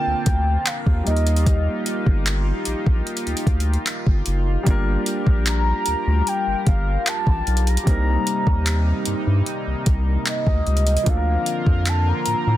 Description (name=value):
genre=contemporary R&B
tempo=75 BPM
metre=4/4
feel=straight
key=C dorian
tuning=A4 = 440 Hz
part: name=mellow horn-like synth lead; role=melody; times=0.0-12.6 s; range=Eb5 to Bb5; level=-25 LUFS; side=equal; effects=chorus
part: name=warm concert grand piano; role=accompaniment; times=0.0-12.6 s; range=F3 to Bb4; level=-29 LUFS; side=left 1 dB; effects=none
part: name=chorused pulse-width pad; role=sustained chords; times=0.0-12.6 s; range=C3 to A5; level=-28 LUFS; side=equal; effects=sidechain pumping
part: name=saturated sub bass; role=bass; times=0.1-12.6 s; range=F#1 to A2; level=-20 LUFS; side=equal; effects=none
part: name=smooth R&B drum kit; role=drums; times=0.3-12.4 s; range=handclaps, hi-hat, kick drum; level=-21 LUFS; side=equal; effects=none
room=little or no reverb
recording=dense, heavily limited modern master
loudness=-18 LUFS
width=side -14 dB against mid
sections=0.0-12.6 A section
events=none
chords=0.0 Bbmaj7/D; 1.1 Eb; 4.7 Gm7; 7.9 Cm7; 11.1 Bbmaj7/D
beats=0.67 | 1.47 2.27 3.06 3.87 | 4.67 5.46 6.26 7.07 | 7.87 8.66 9.46 10.27 | 11.06 11.87